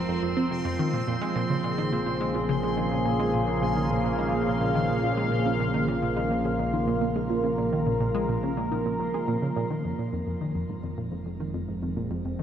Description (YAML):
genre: ambient, sequencer-driven space music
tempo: 106 BPM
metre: 4/4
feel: straight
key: unclear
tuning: A4 = 439 Hz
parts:
  - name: sweeping resonant pad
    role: sustained chords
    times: 0.0-12.4 s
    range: Db3 to F5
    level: -27 LUFS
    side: equal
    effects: chorus, shimmer reverb
  - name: fat analog bass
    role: bass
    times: 0.0-12.4 s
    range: F1 to Bb1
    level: -35 LUFS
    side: equal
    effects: none
  - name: bubbling stepped-filter texture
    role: texture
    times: 0.0-9.9 s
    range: C4 to C6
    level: -36 LUFS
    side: left 1 dB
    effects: chorus, built-in reverb, shimmer reverb
  - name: tight sequenced synth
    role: riff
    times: 0.1-12.4 s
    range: F2 to C4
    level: -29 LUFS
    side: right 1 dB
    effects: chorus, phaser, analog delay, shimmer reverb
room: wet cathedral reverb, RT60 5.0 s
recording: in a vast, echoing space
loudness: -24 LUFS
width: side -9 dB against mid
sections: 0.0-9.8 A section; 9.8-12.4 B section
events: none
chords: 0.0 Fm; 0.8 Bbm7; 9.8 Fm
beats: 0.22 | 0.79 1.36 1.92 2.49 | 3.06 3.62 4.19 4.75 | 5.32 5.88 6.45 7.02 | 7.58 8.15 8.71 9.28 | 9.85 10.41 10.98 11.54 | 12.11